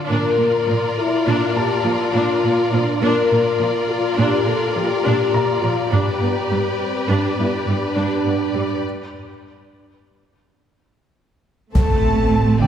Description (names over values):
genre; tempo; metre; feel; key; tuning
cinematic, hybrid orchestral and electronic film score; 103 BPM; 5/4; straight; unclear; A4 = 440 Hz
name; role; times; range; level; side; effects
rich symphonic violin section; second line; 0.0-12.7 s; Bb4 to A5; -26 LUFS; left 3 dB; none
clear symphonic viola section; accompaniment; 0.0-12.7 s; F3 to G4; -23 LUFS; right 1 dB; none
mellow French horn section; sustained chords; 0.1-12.7 s; C4 to Bb4; -21 LUFS; left 3 dB; none
rich symphonic cello section; bass; 0.1-12.7 s; G2 to A3; -22 LUFS; right 2 dB; none
clear concert grand piano; texture; 1.6-12.7 s; Bb4 to Bb5; -31 LUFS; left 2 dB; digital delay
clear symphonic double bass section; bass; 11.8-12.7 s; A1; -20 LUFS; right 3 dB; none
taiko ensemble; drums; 11.8-12.3 s; none; -20 LUFS; equal; none
impact; sound effects; 11.8-12.7 s; none; -22 LUFS; equal; none
room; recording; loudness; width
wet concert hall reverb, RT60 2.2 s; heard from further back in the room; -16 LUFS; side -9 dB against mid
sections
0.0-11.7 A section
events
break 8.8-11.7; impact 11.7-12.7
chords
0.1 Bb; 5.9 G; 8.8 N.C.; 11.7 Am